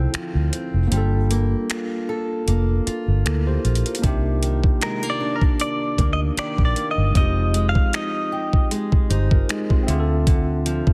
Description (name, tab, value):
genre	contemporary R&B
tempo	77 BPM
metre	4/4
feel	swing 54% on 16ths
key	C minor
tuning	A4 = 440 Hz
part	bright tine electric piano	accompaniment	0.0-10.9 s	G3 to E5	-30 LUFS	equal	none
part	fingerpicked steel-string acoustic guitar	arpeggios	0.0-10.9 s	C3 to A4	-30 LUFS	equal	digital delay
part	vintage muted fingered electric bass	bass	0.0-10.8 s	F1 to D2	-23 LUFS	equal	none
part	smooth R&B drum kit	drums	0.1-10.9 s	finger snaps, hi-hat, kick drum	-23 LUFS	equal	soft clipping on snare
part	direct-recorded clean electric guitar	melody	4.8-8.7 s	Bb4 to F5	-28 LUFS	equal	digital delay
room	digital ambience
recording	dense, heavily limited modern master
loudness	-21 LUFS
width	mono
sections	0.0-10.9 A section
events	break 0.0-4.0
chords	0.0 Dm9; 0.9 Gm9; 4.0 Cm9; 7.2 Fm9; 9.9 Dm9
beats	0.14 | 0.92 1.70 2.48 3.25 | 4.03 4.81 5.59 6.37 | 7.15 7.93 8.71 9.49 | 10.27